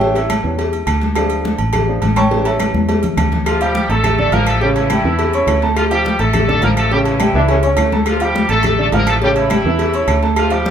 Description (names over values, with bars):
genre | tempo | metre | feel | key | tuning
latin, salsa | 209 BPM | 4/4 | straight | D harmonic minor | A4 = 440 Hz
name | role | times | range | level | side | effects
warm baby grand piano | accompaniment | 0.0-10.7 s | C#3 to C#6 | -18 LUFS | right 3 dB | none
fingered electric bass | bass | 0.0-10.7 s | A1 to E2 | -19 LUFS | equal | none
congas | percussion | 0.0-10.7 s | none | -22 LUFS | left 2 dB | none
cowbell | percussion | 0.0-10.7 s | none | -22 LUFS | left 4 dB | none
agogo bells and timbales | percussion | 0.2-10.7 s | none | -23 LUFS | right 6 dB | none
claves | percussion | 0.3-10.5 s | none | -31 LUFS | left 6 dB | none
bright horn section | melody | 3.5-10.7 s | E3 to Bb4 | -19 LUFS | left 1 dB | none
mellow trombone section | second line | 7.3-8.0 s | A3 to D4 | -22 LUFS | equal | none
room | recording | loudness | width
wet large studio reverb, RT60 1.0 s | band playing live in one room | -13 LUFS | side -8 dB against mid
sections
0.0-3.5 A section; 3.5-10.7 B section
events
grand piano solo 0.0-3.5; drum fill 2.7-3.5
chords
0.0 A7; 1.2 Dm; 2.3 A7; 3.5 Dm; 4.6 A7; 5.8 Dm; 6.9 A7; 8.1 Dm; 9.2 A7